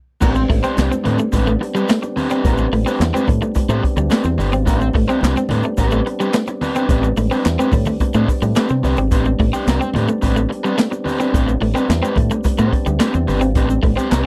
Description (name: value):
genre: funk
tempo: 108 BPM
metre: 4/4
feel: straight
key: A minor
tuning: A4 = 440 Hz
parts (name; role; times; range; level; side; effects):
- raw garage guitar; accompaniment; 0.2-14.3 s; C4 to C5; -24 LUFS; equal; overdrive
- mellow tonewheel organ; sustained chords; 0.2-14.3 s; G3 to D4; -28 LUFS; equal; chorus vibrato, slow rotary speaker
- fingered electric bass with an envelope filter; bass; 0.2-14.2 s; G1 to C3; -21 LUFS; equal; none
- swinging big-band drum kit; drums; 0.2-14.2 s; crash cymbal, handclaps, hi-hat, kick drum, snare drum; -21 LUFS; equal; none
- congas; percussion; 0.2-14.2 s; none; -30 LUFS; equal; none
- egg shaker; percussion; 0.2-14.2 s; none; -43 LUFS; equal; none
- electric guitar at the edge of break-up; riff; 0.4-14.1 s; G3 to C4; -23 LUFS; equal; none
room: little or no reverb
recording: dry, close 1970s-style studio recording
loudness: -17 LUFS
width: mono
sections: 0.2-14.3 A section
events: stop 0.0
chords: 0.2 Am11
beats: | 0.22 0.78 1.33 1.89 | 2.45 3.00 3.56 4.12 | 4.67 5.23 5.78 6.34 | 6.89 7.45 8.01 8.56 | 9.12 9.67 10.23 10.78 | 11.34 11.89 12.45 13.01 | 13.56 14.12